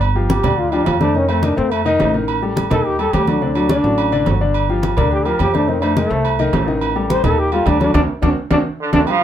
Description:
latin, salsa; 212 BPM; 4/4; straight; A4 = 440 Hz
upright bass; bass; 0.0-9.0 s; G1 to F2; -21 LUFS; equal
agogo bells and timbales; percussion; 0.0-9.2 s; -23 LUFS; right 10 dB
congas; percussion; 0.0-9.2 s; -22 LUFS; equal
warm concert grand piano; accompaniment; 0.2-9.2 s; D3 to G5; -20 LUFS; left 3 dB
warm trombone; melody; 0.3-9.0 s; A3 to C5; -18 LUFS; left 1 dB
bright trombone section; melody; 8.8-9.2 s; D3 to F4; -17 LUFS; right 4 dB
moderate studio ambience, RT60 0.5 s; band playing live in one room; -14 LUFS; side -10 dB against mid
0.0-9.1 A section
trombone solo 0.0-9.1; band accent 7.9-9.1; drum fill 8.7-9.1
0.0 G5; 1.1 F7; 2.3 Ebmaj7#11; 3.4 D; 4.5 G5; 5.7 F7; 6.8 F13 (rootless); 7.9 D7

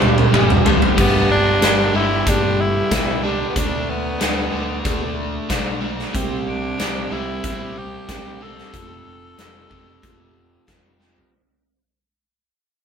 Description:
classic rock; 93 BPM; 4/4; straight; G major; A4 = 441 Hz
raspy tenor saxophone; melody; 0.0-10.7 s; B3 to A4; -25 LUFS; equal
overdriven electric guitar; riff; 0.0-11.8 s; F2 to D4; -22 LUFS; equal
overdriven picked electric bass; bass; 0.0-11.2 s; F1 to D2; -27 LUFS; equal
huge arena drum kit; drums; 0.0-11.3 s; crash cymbal, hi-hat, kick drum, snare drum, toms; -20 LUFS; equal
light reverb; band playing live in one room; -16 LUFS; side -7 dB against mid
1.0-11.3 A section
drum fill 0.0-1.0, 11.0-11.3; fade-out 1.0-11.3
0.0 G5; 3.6 D5; 6.1 C; 8.7 F

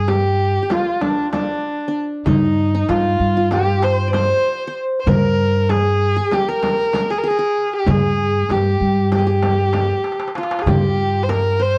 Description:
Turkish makam ensemble; 193 BPM (eighths); 9/8; straight; G makam kurdi; A4 = 440 Hz
rich kamancheh; melody; 0.0-11.8 s; D4 to C5; -22 LUFS; equal
qanun; second line; 0.0-11.8 s; D4 to D5; -27 LUFS; equal
upright bass; bass; 0.0-11.8 s; G2; -21 LUFS; equal
darbuka; percussion; 0.1-11.4 s; -27 LUFS; equal
frame drum; percussion; 0.1-11.4 s; -28 LUFS; equal
light reverb; dry, close 1970s-style studio recording; -18 LUFS; mono
0.0-10.7 A section; 10.7-11.8 B section
drum fill 10.0-10.7

